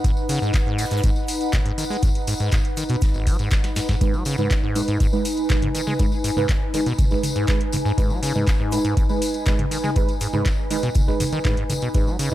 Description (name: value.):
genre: acid house.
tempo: 121 BPM.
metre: 4/4.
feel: straight.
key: G# minor.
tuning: A4 = 440 Hz.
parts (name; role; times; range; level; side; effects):
acid bass, saw; riff; 0.0-12.3 s; G#1 to G#3; -26 LUFS; equal; tube saturation, cassette tape, sidechain pumping.
booming analog drum machine; drums; 0.0-12.3 s; handclaps, hi-hat, snare drum, toms; -29 LUFS; left 1 dB; none.
electronic kick drum; drums; 0.0-12.0 s; none; -21 LUFS; equal; none.
shaker and snare drum; drums; 0.0-12.3 s; none; -43 LUFS; equal; none.
tambourine; percussion; 0.0-12.3 s; none; -35 LUFS; left 4 dB; none.
warbly tape-like pad; texture; 0.0-12.3 s; D#4 to G#5; -27 LUFS; left 1 dB; chorus, built-in reverb, sidechain pumping.
deep mellow chord stab; stabs; 4.0-12.3 s; G#3 to B4; -26 LUFS; right 4 dB; chorus, phaser, tape echo.
room: small room ambience.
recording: dry, gritty hardware recording.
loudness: -19 LUFS.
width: side -14 dB against mid.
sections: 0.0-12.3 A section.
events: drum fill 3.5-4.0.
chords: 0.0 G#m.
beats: | 0.04 0.54 1.04 1.53 | 2.03 2.52 3.02 3.52 | 4.01 4.51 5.00 5.50 | 6.00 6.49 6.99 7.48 | 7.98 8.47 8.97 9.47 | 9.96 10.46 10.95 11.45 | 11.95.